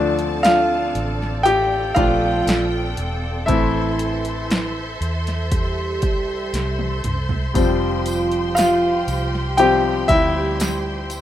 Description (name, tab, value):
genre	pop ballad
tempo	59 BPM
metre	4/4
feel	straight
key	F major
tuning	A4 = 438 Hz
part	mellow French horn section	second line	0.0-11.1 s	D3 to G4	-25 LUFS	right 3 dB	none
part	bright concert grand piano	accompaniment	0.0-11.2 s	E3 to G5	-19 LUFS	left 2 dB	none
part	rich studio string section	sustained chords	0.0-11.2 s	C4 to C6	-28 LUFS	equal	none
part	vintage muted fingered electric bass	bass	0.0-11.2 s	E1 to E2	-26 LUFS	equal	none
part	deep house drum kit	drums	0.2-11.2 s	hi-hat, kick drum, snare drum, toms	-23 LUFS	equal	overdrive
part	tambourine	percussion	7.6-11.2 s	none	-33 LUFS	right 3 dB	none
room	light reverb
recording	rough home demo mix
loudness	-17 LUFS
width	side -12 dB against mid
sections	0.0-11.2 A section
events	grand piano solo 0.0-11.2; drum fill 6.5-7.6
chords	0.0 Dm; 3.5 Am; 7.6 Fsus2